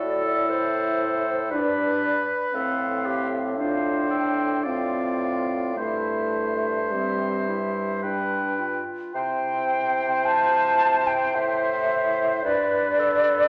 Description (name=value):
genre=classical, slow romantic movement for wind quintet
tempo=54 BPM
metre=3/4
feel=uneven beats, rubato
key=C major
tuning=A4 = 440 Hz
part: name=hollow concert flute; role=melody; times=0.0-13.5 s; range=C5 to A5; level=-28 LUFS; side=equal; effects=none
part: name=clear oboe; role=second line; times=0.0-13.5 s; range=A4 to D5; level=-31 LUFS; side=equal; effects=none
part: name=clear clarinet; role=accompaniment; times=0.0-13.5 s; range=C4 to C5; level=-32 LUFS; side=equal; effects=none
part: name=mellow French horn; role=accompaniment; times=0.0-13.5 s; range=G3 to E4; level=-32 LUFS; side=equal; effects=none
part: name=warm bassoon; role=bass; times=0.0-13.5 s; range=G2 to C3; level=-34 LUFS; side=equal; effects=none
room=wet recital hall reverb, RT60 1.6 s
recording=none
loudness=-24 LUFS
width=mono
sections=0.0-9.2 A section; 9.2-13.5 B section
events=none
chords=0.0 D5/A; 1.5 G; 2.5 F/A; 4.6 Dm7/A; 5.8 C/G; 8.0 G; 9.2 C; 12.5 G